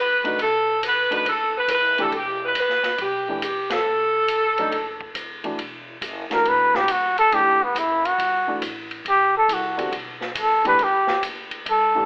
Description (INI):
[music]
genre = jazz, big band swing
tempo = 138 BPM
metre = 4/4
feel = swing 67% on 8ths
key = E minor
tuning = A4 = 440 Hz
[part]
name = clear saxophone section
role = melody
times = 0.0-5.2 s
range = G4 to B4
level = -20 LUFS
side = equal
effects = plate reverb
[part]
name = upright bass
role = bass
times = 0.0-12.1 s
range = E1 to G2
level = -41 LUFS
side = equal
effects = none
[part]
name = warm upright piano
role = accompaniment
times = 0.2-12.1 s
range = D3 to G4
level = -29 LUFS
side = equal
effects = none
[part]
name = swinging big-band drum kit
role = drums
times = 0.2-11.8 s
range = hi-hat, kick drum, ride cymbal, snare drum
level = -29 LUFS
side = equal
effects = none
[part]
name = breathy trumpet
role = melody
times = 6.3-12.1 s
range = B3 to B4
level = -17 LUFS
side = equal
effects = plate reverb
[sound]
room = moderate club reverb, RT60 0.5 s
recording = telephone sound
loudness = -18 LUFS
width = side -26 dB against mid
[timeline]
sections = 0.0-5.6 A section; 5.6-12.1 B section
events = band accent 3.6; trumpet solo 5.6-12.1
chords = 0.0 Bm7; 2.1 Em7; 3.9 Bm7; 5.6 Em9; 7.3 A5; 9.1 Em9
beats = | 0.39 0.82 1.25 1.69 | 2.12 2.55 2.99 3.42 | 3.85 4.29 4.72 5.15 | 5.59 6.02 6.45 6.89 | 7.32 7.75 8.19 8.62 | 9.05 9.49 9.92 10.35 | 10.79 11.22 11.65